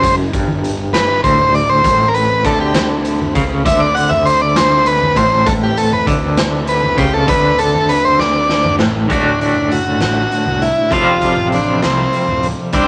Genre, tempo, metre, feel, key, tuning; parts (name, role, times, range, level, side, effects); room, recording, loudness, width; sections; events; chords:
psychedelic rock; 66 BPM (dotted quarters); 6/8; straight; A4 = 440 Hz
combo organ; melody; 0.0-12.9 s; C4 to F#5; -16 LUFS; equal
twangy electric guitar; riff; 0.0-12.9 s; D2 to C5; -20 LUFS; equal; tremolo
fuzz picked electric bass; bass; 0.0-12.9 s; D1 to D2; -25 LUFS; equal; overdrive
raw garage drum kit; drums; 0.0-12.9 s; hi-hat, kick drum, snare drum, toms; -23 LUFS; equal
congas; percussion; 0.0-12.9 s; -29 LUFS; equal
tonewheel organ; sustained chords; 1.8-9.1 s; A3 to B5; -28 LUFS; equal
moderate small room reverb, RT60 0.5 s; -14 LUFS; mono
0.0-9.1 A section; 9.1-12.9 B section
transistor combo organ solo 0.0-9.1; drum fill 8.2-9.1
0.0 D; 1.8 Amadd9; 9.1 D; 10.9 Fadd9